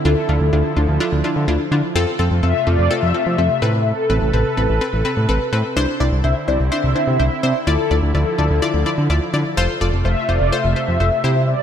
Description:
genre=synth-pop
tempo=126 BPM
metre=4/4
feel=straight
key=unclear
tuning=A4 = 441 Hz
part: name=mellow synth brass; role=melody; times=0.0-11.6 s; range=A4 to E5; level=-22 LUFS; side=left 2 dB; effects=chorus, digital delay
part: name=warm analog pad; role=sustained chords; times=0.0-11.6 s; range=C3 to B4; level=-25 LUFS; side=right 1 dB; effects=chorus
part: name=analog pluck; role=accompaniment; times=0.1-11.6 s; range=C4 to D5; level=-22 LUFS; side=left 2 dB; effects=chorus
part: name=fat analog bass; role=bass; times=0.1-11.5 s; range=F1 to F3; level=-18 LUFS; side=equal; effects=none
room=moderate lush hall reverb, RT60 2.4 s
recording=dark, warm production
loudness=-15 LUFS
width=side -9 dB against mid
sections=0.0-11.6 A section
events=none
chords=0.1 Dmadd9; 2.0 F; 3.6 Amadd9; 5.8 Cadd9; 7.7 Dmadd9; 9.6 F

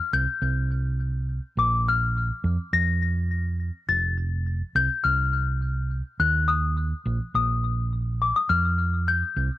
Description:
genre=indie folk with a building arrangement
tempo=104 BPM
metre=4/4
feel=straight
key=unclear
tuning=A4 = 438 Hz
part: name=small celesta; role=melody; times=0.0-9.6 s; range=D6 to Bb6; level=-25 LUFS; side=left 5 dB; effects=tape echo
part: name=hollow-body short-scale fingered electric bass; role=bass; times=0.1-9.5 s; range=F1 to F2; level=-24 LUFS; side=right 1 dB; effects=none
room=small room ambience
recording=home recording on cassette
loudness=-22 LUFS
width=side -15 dB against mid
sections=0.0-9.6 A section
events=none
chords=0.0 Fsus2 (rootless); 1.6 Bb5; 3.9 F; 6.2 Eb5; 8.5 Fsus2

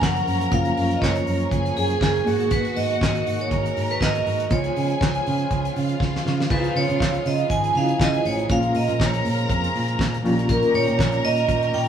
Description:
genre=disco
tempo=120 BPM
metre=4/4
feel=swing 56% on 16ths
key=unclear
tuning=A4 = 440 Hz
part: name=vibraphone with hard mallets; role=melody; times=0.0-11.9 s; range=G#4 to G#5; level=-24 LUFS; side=right 3 dB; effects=none
part: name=clear studio string section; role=second line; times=0.0-11.9 s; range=E#4 to A#5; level=-29 LUFS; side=left 2 dB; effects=none
part: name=overdriven reed electric piano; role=accompaniment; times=0.0-11.9 s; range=E#3 to F#4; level=-28 LUFS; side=left 2 dB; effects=fast tremolo
part: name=overdriven tonewheel organ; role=sustained chords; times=0.0-11.9 s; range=B2 to G4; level=-32 LUFS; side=right 1 dB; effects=chorus vibrato, slow rotary speaker
part: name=fingered electric bass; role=bass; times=0.0-11.9 s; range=F#1 to C#3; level=-25 LUFS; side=right 1 dB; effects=none
part: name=damped 70s drum kit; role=drums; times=0.0-11.9 s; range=crash cymbal, handclaps, hi-hat, kick drum, snare drum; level=-25 LUFS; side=equal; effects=none
room=moderate stone room reverb, RT60 1.1 s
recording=band playing live in one room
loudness=-19 LUFS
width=side -8 dB against mid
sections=0.0-6.5 A section; 6.5-11.9 B section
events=drum fill 6.0-6.5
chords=0.0 F#maj7; 2.3 G#m7; 4.5 C#7; 6.5 C#9; 8.5 A#m7; 10.2 D#7/A#

